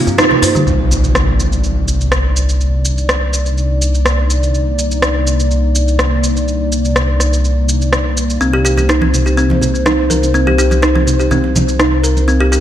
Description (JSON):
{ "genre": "afro house", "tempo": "124 BPM", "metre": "4/4", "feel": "straight", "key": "C minor", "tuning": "A4 = 439 Hz", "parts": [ { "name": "dark analog pad", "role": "sustained chords", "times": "0.0-12.6 s", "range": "Bb3 to D5", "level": "-21 LUFS", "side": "left 1 dB", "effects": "chorus" }, { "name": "kalimba", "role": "arpeggios", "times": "0.0-0.6, 8.4-12.6 s", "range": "G3 to C5", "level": "-15 LUFS", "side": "right 1 dB", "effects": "tape echo" }, { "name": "afro-pop drum kit", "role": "drums", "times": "0.1-12.6 s", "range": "hi-hat, rim click, shaker, toms", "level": "-18 LUFS", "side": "equal", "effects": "studio reverb" }, { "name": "djembe", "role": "percussion", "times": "0.1-0.5 s", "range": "none", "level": "-20 LUFS", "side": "equal", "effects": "none" }, { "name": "congas", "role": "percussion", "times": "0.2-0.6, 8.8-12.3 s", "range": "none", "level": "-20 LUFS", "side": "right 2 dB", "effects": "none" }, { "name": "dark detuned saw bass", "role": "bass", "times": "0.7-12.6 s", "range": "C2", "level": "-14 LUFS", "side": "equal", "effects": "none" }, { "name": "impact", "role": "sound effects", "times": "0.7-2.6 s", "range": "none", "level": "-19 LUFS", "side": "equal", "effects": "none" } ], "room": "light reverb, digital ambience", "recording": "dark, warm production", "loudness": "-11 LUFS", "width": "side -11 dB against mid", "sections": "0.7-12.6 A section", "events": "break 0.0-0.7; band accent 0.2; impact 0.7-2.6; filter sweep on analog synth pad 0.7-12.6", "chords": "0.0 Cm7; 0.7 Cm9", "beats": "0.18 | 0.67 1.15 1.63 2.12 | 2.60 3.08 3.57 4.05 | 4.54 5.02 5.50 5.99 | 6.47 6.96 7.44 7.92 | 8.41 8.89 9.38 9.86 | 10.34 10.83 11.31 11.79 | 12.28" }